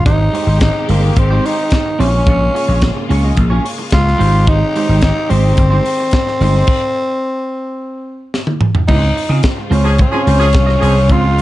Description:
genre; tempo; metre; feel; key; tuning
disco; 109 BPM; 4/4; straight; unclear; A4 = 440 Hz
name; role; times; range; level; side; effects
growling tenor saxophone; melody; 0.0-11.4 s; Bb3 to F4; -17 LUFS; equal; slapback echo
bright studio string section; sustained chords; 0.0-11.4 s; Db3 to C5; -25 LUFS; left 1 dB; none
clean electric guitar; accompaniment; 0.1-11.4 s; Ab3 to Eb5; -22 LUFS; right 4 dB; lush chorus
vintage slap bass; bass; 0.1-11.4 s; G1 to Db3; -13 LUFS; equal; none
tight funk drum kit; drums; 0.1-11.4 s; crash cymbal, hi-hat, kick drum, snare drum, toms; -16 LUFS; equal; none
clear horn section; stabs; 9.8-11.0 s; F3 to Ab4; -21 LUFS; equal; slapback echo
room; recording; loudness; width
light reverb, small room ambience; dark, warm production, nothing above 10.9 kHz; -11 LUFS; side -16 dB against mid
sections
0.1-8.9 A section; 8.9-11.4 B section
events
stop 6.7-8.9; drum fill 8.3-8.9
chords
0.1 Abmaj7; 2.0 Bbm7; 4.2 Abmaj7; 8.9 Dbmaj7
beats
| 0.06 0.61 1.16 1.72 | 2.27 2.82 3.37 3.92 | 4.47 5.03 5.58 6.13 | 6.68 7.23 7.79 8.34 | 8.89 9.44 9.99 10.54 | 11.10

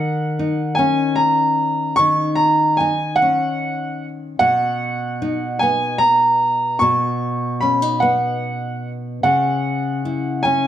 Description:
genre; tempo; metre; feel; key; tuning
folk; 50 BPM (dotted quarters); 6/8; straight; B major; A4 = 436 Hz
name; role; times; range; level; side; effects
clear upright piano; melody; 0.0-10.7 s; F#5 to C#6; -17 LUFS; right 1 dB; none
nylon-string guitar; accompaniment; 0.0-10.7 s; B2 to E4; -22 LUFS; left 2 dB; none
room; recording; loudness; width
moderate large studio reverb, RT60 1.3 s; close, detailed microphones; -16 LUFS; side -11 dB against mid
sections
0.0-10.7 A section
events
none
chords
0.0 D#m7; 4.4 B; 9.2 C#m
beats
0.77 | 1.98 3.19 | 4.40 5.61 | 6.82 8.02 | 9.23 10.44

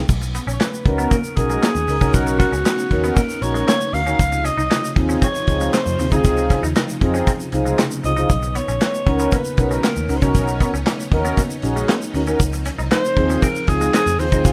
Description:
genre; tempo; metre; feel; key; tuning
early-eighties boogie funk; 117 BPM; 4/4; straight; B major; A4 = 441 Hz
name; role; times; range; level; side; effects
vintage muted picked electric bass; bass; 0.0-14.5 s; A#1 to E#2; -25 LUFS; equal; none
string machine, full ensemble; sustained chords; 0.1-14.5 s; B#2 to D#4; -31 LUFS; equal; ensemble chorus
modern studio drum kit; drums; 0.1-14.5 s; crash cymbal, handclaps, hi-hat, kick drum, snare drum; -22 LUFS; equal; none
tube shaker; percussion; 0.1-14.5 s; none; -38 LUFS; equal; none
clean electric guitar; riff; 0.2-14.4 s; G#3 to D#4; -32 LUFS; equal; ensemble chorus
raspy alto saxophone; melody; 0.5-14.5 s; E#4 to E#5; -25 LUFS; equal; none
mellow synth brass; accompaniment; 0.9-14.5 s; B#3 to A#4; -24 LUFS; equal; chorus
room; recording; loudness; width
small room reverb; rough home demo mix; -19 LUFS; mono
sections
0.1-14.5 A section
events
none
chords
0.1 Bmaj9; 4.2 C#maj9; 8.3 Bmaj9; 12.4 C#maj9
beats
| 0.09 0.60 1.12 1.63 | 2.14 2.65 3.17 3.68 | 4.19 4.71 5.22 5.73 | 6.25 6.76 7.27 7.78 | 8.30 8.81 9.32 9.84 | 10.35 10.86 11.37 11.89 | 12.40 12.91 13.43 13.94 | 14.45

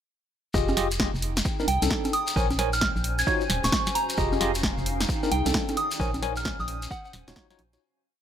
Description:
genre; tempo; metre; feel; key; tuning
UK garage, two-step garage; 132 BPM; 4/4; swing 64% on 16ths; unclear; A4 = 440 Hz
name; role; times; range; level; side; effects
tine electric piano; stabs; 0.5-7.8 s; C4 to Ab5; -29 LUFS; equal; medium stereo tremolo, vintage 12-bit sampler grit, ping-pong delay
organ-like FM bass; bass; 0.5-7.8 s; Eb1 to C2; -29 LUFS; equal; tube saturation
electronic kick drum; drums; 0.5-7.5 s; none; -31 LUFS; equal; overdrive
shekere; percussion; 0.5-7.8 s; none; -35 LUFS; left 2 dB; none
granular cloud pad; texture; 1.2-7.8 s; Db4 to Ab5; -35 LUFS; right 1 dB; built-in reverb, sidechain pumping
punchy analog drum machine; drums; 0.7-7.8 s; congas, hi-hat, snare drum; -28 LUFS; equal; overdrive
soft synth bell; melody; 1.7-7.1 s; Gb5 to Ab6; -29 LUFS; right 1 dB; chorus, ping-pong delay
room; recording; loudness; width
digital ambience; none; -23 LUFS; side -9 dB against mid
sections
0.5-7.8 drop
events
drop 0.5-7.8; fade-out 5.4-7.8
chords
0.5 Fm9; 1.5 Cmadd9; 2.1 Bbm9; 3.3 Ebm9; 4.2 Fm9; 5.1 Cmadd9; 5.8 Bbm9; 6.9 Ebm9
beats
| 0.54 1.00 1.45 1.91 | 2.36 2.81 3.27 3.72 | 4.18 4.63 5.09 5.54 | 6.00 6.45 6.91 7.36

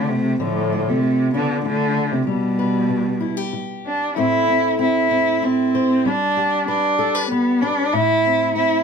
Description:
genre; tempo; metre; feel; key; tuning
acoustic folk duo or small band; 96 BPM; 3/4; straight; unclear; A4 = 437 Hz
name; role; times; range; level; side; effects
warm cello; melody; 0.0-8.8 s; A2 to E4; -18 LUFS; right 1 dB; none
warm cello; second line; 0.0-3.5 s; F3 to B3; -24 LUFS; right 1 dB; none
fingerpicked steel-string acoustic guitar; accompaniment; 0.0-8.8 s; A2 to C5; -24 LUFS; left 4 dB; none
room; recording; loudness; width
moderate small room reverb, RT60 0.5 s; none; -17 LUFS; side -6 dB against mid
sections
0.0-4.2 A section; 4.2-8.8 B section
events
none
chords
0.4 Dm; 2.3 G; 4.2 Am; 6.0 G; 7.9 Am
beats
| 0.40 1.03 1.66 | 2.29 2.92 3.54 | 4.17 4.80 5.42 | 6.05 6.68 7.30 | 7.93 8.55

